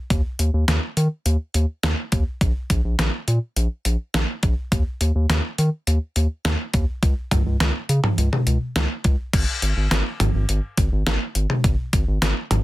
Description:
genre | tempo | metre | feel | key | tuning
synth-pop | 104 BPM | 4/4 | straight | unclear | A4 = 440 Hz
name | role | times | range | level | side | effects
round analog bass | bass | 0.1-12.6 s | Ab1 to Eb3 | -20 LUFS | equal | none
detuned 8-bit digital drum machine | drums | 0.1-12.6 s | crash cymbal, hi-hat, kick drum, snare drum, toms | -22 LUFS | equal | overdrive
room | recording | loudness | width
little or no reverb | dense, heavily limited modern master | -19 LUFS | side -17 dB against mid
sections
0.0-9.3 A section; 9.3-12.6 B section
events
none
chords
none

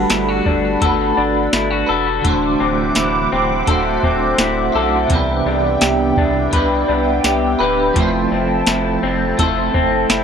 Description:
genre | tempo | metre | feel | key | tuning
dream pop | 84 BPM | 4/4 | straight | G major | A4 = 440 Hz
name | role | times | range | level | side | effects
clean electric guitar | accompaniment | 0.0-10.2 s | C3 to C5 | -21 LUFS | right 5 dB | tremolo, ensemble chorus
phased analog pad | sustained chords | 0.0-10.2 s | B3 to D6 | -20 LUFS | right 2 dB | phaser, chorus
electric guitar through a small old amp | arpeggios | 0.0-10.2 s | C3 to B4 | -18 LUFS | left 4 dB | lush chorus, ping-pong delay
saturated sub bass | bass | 0.0-10.2 s | D1 to C2 | -25 LUFS | right 1 dB | none
soft vintage rhythm box | drums | 0.1-10.2 s | hi-hat, kick drum, snare drum, tambourine | -18 LUFS | equal | none
room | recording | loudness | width
moderate studio reverb, RT60 0.6 s | none | -14 LUFS | side -7 dB against mid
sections
0.0-10.2 A section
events
none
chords
0.0 Gmaj9; 2.2 D9; 5.1 Cmaj9; 8.0 Fmaj7

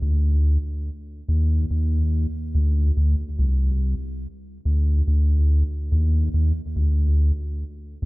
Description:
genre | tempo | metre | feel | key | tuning
reggae | 71 BPM | 4/4 | straight | unclear | A4 = 440 Hz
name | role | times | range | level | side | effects
warm sub bass | solo | 0.0-8.1 s | C2 to Eb2 | -19 LUFS | equal | analog delay
room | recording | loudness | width
little or no reverb | echo-heavy mix | -19 LUFS | side -22 dB against mid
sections
0.0-8.1 A section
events
none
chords
none

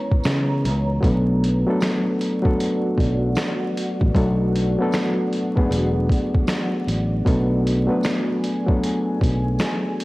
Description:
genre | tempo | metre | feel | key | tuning
lo-fi hip hop | 77 BPM | 4/4 | swing 66% on 16ths | B dorian | A4 = 440 Hz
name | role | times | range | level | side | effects
barky reed electric piano | accompaniment | 0.0-10.0 s | E3 to B4 | -22 LUFS | left 1 dB | cassette tape
deep dark ambient pad | sustained chords | 0.0-10.0 s | E3 to A#5 | -30 LUFS | equal | chorus, built-in reverb, cassette tape
boom bap sampler-style drum kit | drums | 0.1-10.0 s | finger snaps, hi-hat, kick drum, snare drum | -23 LUFS | equal | cassette tape
tambourine | percussion | 0.2-9.8 s | none | -45 LUFS | right 5 dB | none
fingered electric bass | bass | 0.3-9.6 s | E1 to C#3 | -21 LUFS | equal | transformer saturation
room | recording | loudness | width
digital ambience | home recording on cassette, vinyl crackle | -18 LUFS | side -20 dB against mid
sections
0.0-10.0 A section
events
none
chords
0.0 C#m7; 1.0 Bm7

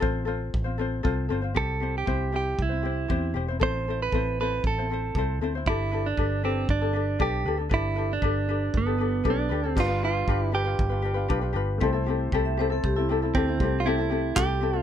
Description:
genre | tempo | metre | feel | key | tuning
acoustic pop | 117 BPM | 4/4 | straight | C major | A4 = 442 Hz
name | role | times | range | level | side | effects
ukulele | accompaniment | 0.0-14.8 s | C4 to C5 | -29 LUFS | left 7 dB | none
vintage muted fingered electric bass | bass | 0.0-14.8 s | E1 to E2 | -29 LUFS | equal | none
cloth-damped thuddy drum kit | drums | 0.0-14.5 s | crash cymbal, handclaps, kick drum | -29 LUFS | equal | none
direct-recorded clean electric guitar | melody | 1.6-14.8 s | B3 to C5 | -28 LUFS | right 6 dB | none
warm upright piano | accompaniment | 9.8-14.8 s | G3 to C5 | -36 LUFS | left 2 dB | none
vibraphone with medium hard mallets | second line | 12.5-13.6 s | E4 to E5 | -31 LUFS | right 3 dB | none
room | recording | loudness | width
little or no reverb | close, detailed microphones | -24 LUFS | side -10 dB against mid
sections
0.0-9.8 A section; 9.8-14.8 B section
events
none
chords
0.0 F/A; 1.6 C; 3.6 Am; 5.7 Gadd9; 9.8 G7; 11.8 C6

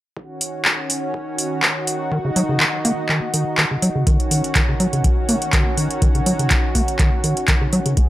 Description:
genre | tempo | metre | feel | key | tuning
acid house | 123 BPM | 4/4 | swing 54% on 16ths | Eb minor | A4 = 439 Hz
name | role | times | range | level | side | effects
lush unison pad | sustained chords | 0.2-8.1 s | Eb3 to Ab4 | -24 LUFS | equal | chorus, sidechain pumping
electronic kick drum | drums | 0.2-8.1 s | none | -18 LUFS | equal | overdrive, high-pass filter on kick, high-pass filter on room
booming analog drum machine | drums | 0.4-8.1 s | handclaps, hi-hat | -20 LUFS | equal | overdrive
deep acid bass | riff | 2.1-8.0 s | Db3 to Bb3 | -21 LUFS | equal | tube saturation, sidechain pumping, analog delay
room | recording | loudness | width
little or no reverb | dry, gritty hardware recording | -16 LUFS | side -15 dB against mid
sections
0.2-4.1 A section; 4.1-8.1 B section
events
none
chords
0.2 Ebm7

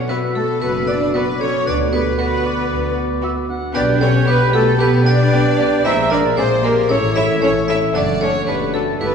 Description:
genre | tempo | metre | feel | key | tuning
cinematic, playful, whimsical film cue | 114 BPM | 4/4 | straight | B minor, D major from 3.8 s | A4 = 439 Hz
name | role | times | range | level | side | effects
vibraphone with hard mallets | melody | 0.0-9.1 s | A4 to E5 | -24 LUFS | right 3 dB | none
warm oboe | second line | 0.0-9.1 s | D5 to Bb5 | -26 LUFS | right 2 dB | none
mellow French horn section | sustained chords | 0.0-9.1 s | A3 to Ab4 | -24 LUFS | left 1 dB | none
concert harp | arpeggios | 0.0-9.1 s | F#2 to D6 | -24 LUFS | left 3 dB | none
rich studio cello section | bass | 0.0-9.1 s | A3 to E4 | -25 LUFS | right 2 dB | none
rich studio violin section | melody | 0.1-9.1 s | A4 to E5 | -29 LUFS | left 3 dB | none
mellow clarinet | second line | 0.1-9.1 s | F#4 to C#5 | -25 LUFS | left 1 dB | none
mellow flute section | second line | 0.1-9.1 s | A4 to E5 | -25 LUFS | left 2 dB | none
rich studio violin section | second line | 0.1-9.1 s | Ab3 to Ab4 | -28 LUFS | left 1 dB | none
rich studio viola section | accompaniment | 0.1-9.1 s | A4 to E5 | -24 LUFS | right 1 dB | none
rich studio double bass section | bass | 0.6-9.1 s | F#1 to D2 | -21 LUFS | left 1 dB | none
room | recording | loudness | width
wet scoring stage reverb, RT60 2.1 s | heard from further back in the room, nothing above 10.3 kHz | -14 LUFS | side -6 dB against mid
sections
0.0-9.1 A section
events
none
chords
0.0 Bm; 1.7 Bm/D; 3.8 G/B; 5.8 Bb7; 6.9 A; 8.0 D/F#

